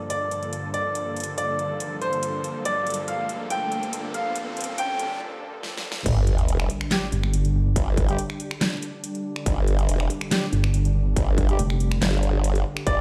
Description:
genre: heavy wobble dubstep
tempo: 141 BPM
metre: 4/4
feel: half-time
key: G minor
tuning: A4 = 439 Hz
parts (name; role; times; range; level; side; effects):
- supersaw pad; sustained chords; 0.0-13.0 s; G2 to A4; -35 LUFS; equal; sidechain pumping, low-pass filter
- riser and sub drop; sound effects; 1.3-7.8 s; none; -35 LUFS; equal; none
- bright grand piano; melody; 0.1-5.2, 12.9-13.0 s; C5 to G5; -29 LUFS; equal; digital delay
- dubstep drum kit; drums; 0.1-13.0 s; crash cymbal, finger snaps, handclaps, hi-hat, snare drum; -31 LUFS; equal; studio reverb
- formant-sweep wobble bass; bass; 6.1-13.0 s; F1 to G1; -25 LUFS; equal; chorus, overdrive
- electronic kick drum; drums; 6.1-13.0 s; none; -26 LUFS; equal; distortion, studio reverb
- dark brass ensemble; stabs; 6.9-11.6 s; G3 to G4; -35 LUFS; equal; digital delay
- pulsing pluck wobble bass; bass; 7.1-7.7, 10.5-12.0 s; F1 to G1; -23 LUFS; equal; chorus, overdrive
room: light reverb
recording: played on a big sound system in a bare room, stone room reverb, high-pass filter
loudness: -25 LUFS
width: mono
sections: 0.0-6.1 A section; 6.1-13.0 B section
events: build-up 0.0-6.1; filter sweep 0.0-6.1; riser 1.3-5.2; break 5.2-6.1; drum fill 5.6-6.1; drop 6.1-13.0; impact 6.1-7.8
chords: 0.0 Gm7; 6.1 G5

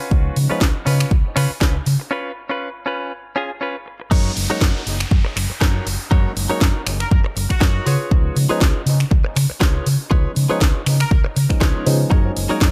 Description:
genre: filtered disco house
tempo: 120 BPM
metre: 4/4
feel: swing 55% on 16ths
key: F# major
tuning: A4 = 440 Hz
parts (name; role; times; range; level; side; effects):
- direct-recorded clean electric guitar; riff; 0.0-12.7 s; C#4 to C#5; -28 LUFS; equal; sidechain pumping, low-pass filter
- barky reed electric piano; accompaniment; 0.1-0.6, 4.1-12.6 s; E#3 to D#4; -29 LUFS; equal; overdrive, fast tremolo, phaser, vintage 12-bit sampler grit, sidechain pumping, low-pass filter, dub echo
- hollow-body short-scale fingered electric bass; bass; 0.1-12.7 s; F#1 to C#3; -22 LUFS; equal; sidechain pumping, low-pass filter
- electronic kick drum; drums; 0.1-12.7 s; none; -18 LUFS; equal; overdrive
- house drum kit; drums; 0.4-12.7 s; crash cymbal, finger snaps, hi-hat, snare drum; -26 LUFS; equal; overdrive, sidechain pumping on hats, sidechain pumping on cymbals
- downlifter; sound effects; 4.1-8.1 s; none; -34 LUFS; equal; none
- muted trumpet section; melody; 7.0-7.9, 11.0-11.2 s; F#4 to A#4; -34 LUFS; equal; sidechain pumping, low-pass filter, dub echo
room: light reverb, digital ambience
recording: echo-heavy mix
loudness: -18 LUFS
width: mono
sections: 0.0-4.1 A section; 4.1-12.7 B section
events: filter sweep 0.0-4.1; break 2.1-4.1; drop 4.1-12.7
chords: 0.0 C#7; 4.1 F#6; 7.9 C#7; 12.1 F#6

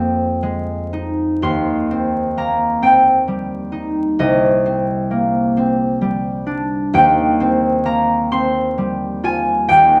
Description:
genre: classical, solo harp piece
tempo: 44 BPM (dotted quarters)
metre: 6/8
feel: rubato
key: Eb major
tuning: A4 = 440 Hz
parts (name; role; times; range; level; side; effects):
- concert harp; solo; 0.0-10.0 s; C2 to C6; -17 LUFS; equal; none
room: wet stone room reverb, RT60 1.1 s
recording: vinyl crackle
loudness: -17 LUFS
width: mono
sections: 0.0-10.0 A section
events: none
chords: 0.0 Fm7; 1.4 Eb6; 4.2 Cmadd9; 6.9 Eb69

